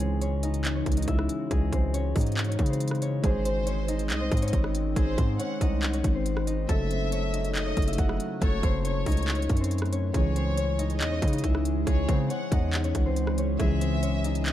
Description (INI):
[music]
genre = hip hop, trap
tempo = 139 BPM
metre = 4/4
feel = half-time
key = C# harmonic minor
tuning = A4 = 439 Hz
[part]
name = concert harp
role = melody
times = 0.0-14.5 s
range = G#3 to F#5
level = -32 LUFS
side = left 3 dB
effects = none
[part]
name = dark concert grand piano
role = accompaniment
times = 0.0-14.5 s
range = C#3 to B#4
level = -36 LUFS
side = equal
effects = none
[part]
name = glassy FM pad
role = sustained chords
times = 0.0-14.5 s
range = C#3 to G#4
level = -35 LUFS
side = left 1 dB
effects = ensemble chorus, built-in reverb
[part]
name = distorted 808-style bass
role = bass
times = 0.0-14.5 s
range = F#1 to C#3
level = -28 LUFS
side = equal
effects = distortion
[part]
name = trap drum kit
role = drums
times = 0.0-14.5 s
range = handclaps, hi-hat, kick drum, rim click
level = -28 LUFS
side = equal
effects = none
[part]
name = warm chamber violin section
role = second line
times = 3.2-14.5 s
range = B#4 to F#5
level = -36 LUFS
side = left 1 dB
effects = digital delay
[sound]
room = small room reverb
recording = dark, warm production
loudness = -24 LUFS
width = side -12 dB against mid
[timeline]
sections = 0.0-10.1 A section; 10.1-14.5 A section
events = none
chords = 0.0 C#m; 3.2 G#; 6.7 F#m; 10.1 C#m